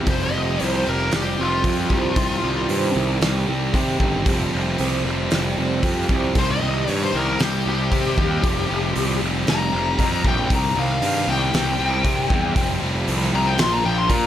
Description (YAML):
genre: quiet-loud alternative rock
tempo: 115 BPM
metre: 4/4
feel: straight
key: C minor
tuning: A4 = 441 Hz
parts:
  - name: fingerpicked old ladder-braced acoustic guitar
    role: arpeggios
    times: 0.0-6.4 s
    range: C3 to G4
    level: -28 LUFS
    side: right 4 dB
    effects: none
  - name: thick fuzz guitar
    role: riff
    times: 0.0-14.3 s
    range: Bb2 to G4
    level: -24 LUFS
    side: equal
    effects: distortion
  - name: fuzz picked electric bass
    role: bass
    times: 0.0-14.3 s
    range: F1 to C3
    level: -24 LUFS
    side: equal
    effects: overdrive
  - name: bluesy overdriven lead guitar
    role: melody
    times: 0.1-2.9, 6.4-14.3 s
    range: F4 to C6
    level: -24 LUFS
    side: left 2 dB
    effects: distortion
  - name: loose indie drum kit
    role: drums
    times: 0.1-14.2 s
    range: hi-hat, kick drum, snare drum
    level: -24 LUFS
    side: equal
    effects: none
room: light reverb, studio reverb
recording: none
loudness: -18 LUFS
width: side -11 dB against mid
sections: 0.0-14.3 A section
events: lead electric guitar solo 0.0-14.3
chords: 0.1 Fsus2; 2.2 Cm; 4.3 Fsus2; 6.4 Cm; 8.4 Fsus2; 10.5 Cm; 12.6 Fsus2; 13.6 Bb